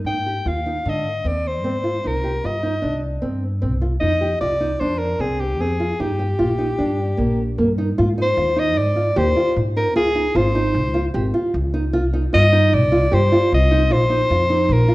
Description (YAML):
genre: contemporary instrumental, chamber music in an uneven meter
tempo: 152 BPM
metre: 5/4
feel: straight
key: unclear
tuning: A4 = 440 Hz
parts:
  - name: upright bass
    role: bass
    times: 0.0-14.9 s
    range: Ab1 to Ab2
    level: -21 LUFS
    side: equal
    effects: none
  - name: warm soprano saxophone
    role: melody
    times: 0.1-14.9 s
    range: G4 to G5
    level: -21 LUFS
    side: left 1 dB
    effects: none
  - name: nylon-string guitar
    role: arpeggios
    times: 0.1-14.9 s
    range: D3 to G4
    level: -22 LUFS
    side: right 1 dB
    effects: none
room: wet recital hall reverb, RT60 1.5 s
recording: worn, warbling old tape, cassette tape, warbly pitch drift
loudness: -17 LUFS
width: side -18 dB against mid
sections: 0.0-8.0 A section; 8.0-14.9 B section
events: none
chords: 0.1 Abmaj7; 2.0 Cm; 6.0 Eb; 8.0 Ab6; 10.0 Dbmaj7; 11.9 Cm; 13.9 Bbsus24